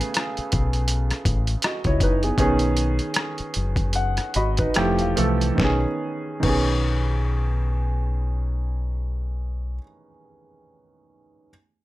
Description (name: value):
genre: R&B, neo-soul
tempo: 70-83 BPM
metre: 4/4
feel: swing 57% on 16ths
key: B mixolydian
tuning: A4 = 440 Hz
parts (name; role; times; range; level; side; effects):
- clear concert grand piano; accompaniment; 0.0-11.5 s; C#3 to B5; -25 LUFS; right 2 dB; none
- boom bap sampler-style drum kit; drums; 0.0-6.7 s; crash cymbal, hi-hat, kick drum, rim click, snare drum; -25 LUFS; left 1 dB; overdrive
- deep dub fingered electric bass; bass; 0.4-9.8 s; E1 to C#2; -23 LUFS; left 1 dB; none
room: light reverb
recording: none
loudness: -20 LUFS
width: side -16 dB against mid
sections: 0.0-5.6 A section; 5.6-9.0 B section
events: slowing down 0.0-5.6; grand piano fill 3.9-5.6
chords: 0.0 Amaj9; 2.4 B69; 4.7 Fmaj9; 5.6 B69